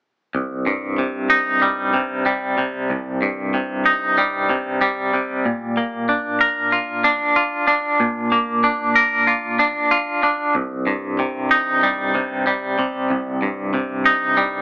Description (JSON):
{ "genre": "rock", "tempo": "94 BPM", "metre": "4/4", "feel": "straight", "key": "C minor", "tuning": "A4 = 440 Hz", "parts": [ { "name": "twangy electric guitar", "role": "arpeggios", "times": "0.3-14.6 s", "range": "C2 to Bb4", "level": "-16 LUFS", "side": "equal", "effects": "tremolo" } ], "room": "moderate small room reverb, RT60 0.5 s", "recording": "band playing live in one room, small speaker sound", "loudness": "-17 LUFS", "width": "side -23 dB against mid", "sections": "0.3-14.6 A section", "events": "none", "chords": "0.3 Cm; 5.4 Bb; 10.5 Cm", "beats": "| 0.34 0.98 1.62 2.26 | 2.89 3.53 4.17 4.81 | 5.45 6.08 6.72 7.36 | 8.00 8.63 9.27 9.91 | 10.54 11.18 11.82 12.46 | 13.10 13.73 14.37" }